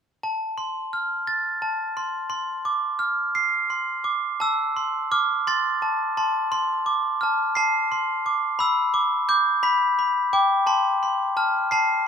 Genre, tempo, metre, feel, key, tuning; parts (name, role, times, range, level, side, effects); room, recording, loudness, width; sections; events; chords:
children's music; 58 BPM (dotted quarters); 6/8; straight; F major; A4 = 441 Hz
glockenspiel with hard plastic mallets; melody; 0.2-12.1 s; G5 to C7; -21 LUFS; equal
light reverb; minimal, uncompressed stereo recording; -21 LUFS; side -7 dB against mid
0.2-4.4 A section; 4.4-12.1 B section
0.2 F; 2.3 Dm7; 4.4 F; 6.5 Dm7; 8.6 G; 10.7 F